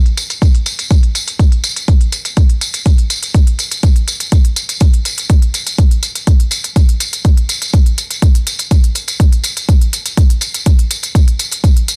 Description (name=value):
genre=techno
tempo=123 BPM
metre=4/4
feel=straight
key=none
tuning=none
part: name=electronic hi-hat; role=drums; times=0.1-12.0 s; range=none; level=-24 LUFS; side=equal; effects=overdrive, low-pass filter on snare, small room ambience, low-pass filter on hats, low-pass filter on cymbals, low-pass filter on perc
part: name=tambourine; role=percussion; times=0.2-12.0 s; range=none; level=-23 LUFS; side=equal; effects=none
part: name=electronic kick drum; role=drums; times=0.4-11.7 s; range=none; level=-12 LUFS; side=equal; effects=small room ambience
room=little or no reverb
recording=dense, heavily limited modern master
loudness=-13 LUFS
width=mono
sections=0.0-12.0 A section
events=none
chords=none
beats=| 0.42 0.91 1.39 1.88 | 2.37 2.86 3.35 3.83 | 4.32 4.81 5.30 5.78 | 6.27 6.76 7.25 7.74 | 8.22 8.71 9.20 9.69 | 10.18 10.66 11.15 11.64